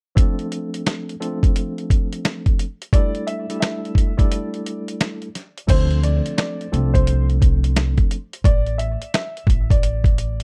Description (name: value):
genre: hip hop, boom-bap hip-hop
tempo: 87 BPM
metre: 4/4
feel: swing 62% on 16ths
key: D minor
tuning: A4 = 439 Hz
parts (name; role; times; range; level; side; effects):
- tine electric piano; accompaniment; 0.2-8.2 s; F3 to A4; -30 LUFS; equal; cassette tape, high-pass filter, low-pass filter
- dusty soul sampler-style drum kit; drums; 0.2-10.4 s; crash cymbal, hi-hat, kick drum, snare drum; -20 LUFS; equal; none
- warm upright piano; melody; 2.9-10.4 s; C5 to E5; -31 LUFS; equal; high-pass filter, low-pass filter, delay
- upright bass; bass; 5.7-10.4 s; A1 to D2; -22 LUFS; equal; none
room: little or no reverb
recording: dark, warm production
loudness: -20 LUFS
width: mono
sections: 0.2-5.7 A section; 5.7-10.4 B section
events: break 4.3-5.7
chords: 0.2 Dm7; 2.9 A7sus4; 5.7 Dm7; 8.4 Asus4